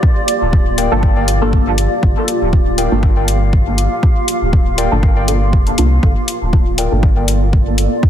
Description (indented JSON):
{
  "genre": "dub techno",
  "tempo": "120 BPM",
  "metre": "4/4",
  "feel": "swing 55% on 16ths",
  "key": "G minor",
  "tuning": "A4 = 442 Hz",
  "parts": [
    { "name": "granular cloud pad", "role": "sustained chords", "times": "0.0-8.1 s", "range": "Bb3 to F5", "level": "-19 LUFS", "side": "right 1 dB", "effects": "built-in reverb, sidechain pumping" },
    { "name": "electronic kick drum", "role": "drums", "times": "0.0-8.1 s", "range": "none", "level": "-13 LUFS", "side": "equal", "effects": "none" },
    { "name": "electronic hi-hat", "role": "drums", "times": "0.3-7.9 s", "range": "none", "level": "-20 LUFS", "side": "left 4 dB", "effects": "overdrive" },
    { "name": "warm sub bass", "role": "bass", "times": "0.4-7.9 s", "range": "D1 to C2", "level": "-16 LUFS", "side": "equal", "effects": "sidechain pumping" },
    { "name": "warbly dusty pluck", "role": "riff", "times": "0.8-7.3 s", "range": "Bb4 to G5", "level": "-24 LUFS", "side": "left 4 dB", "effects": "chorus, sidechain pumping, dub echo" },
    { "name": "deep mellow chord stab", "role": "stabs", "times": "0.9-7.0 s", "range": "Bb3 to A4", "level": "-22 LUFS", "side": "equal", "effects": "chorus, phaser, dub echo" }
  ],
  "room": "little or no reverb",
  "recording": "dense, heavily limited modern master",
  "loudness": "-12 LUFS",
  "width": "side -10 dB against mid",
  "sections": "0.0-8.1 A section",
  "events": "none",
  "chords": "0.0 Gm7",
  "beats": "| 0.03 0.53 1.03 1.53 | 2.03 2.53 3.03 3.53 | 4.03 4.53 5.03 5.53 | 6.03 6.53 7.03 7.53 | 8.03"
}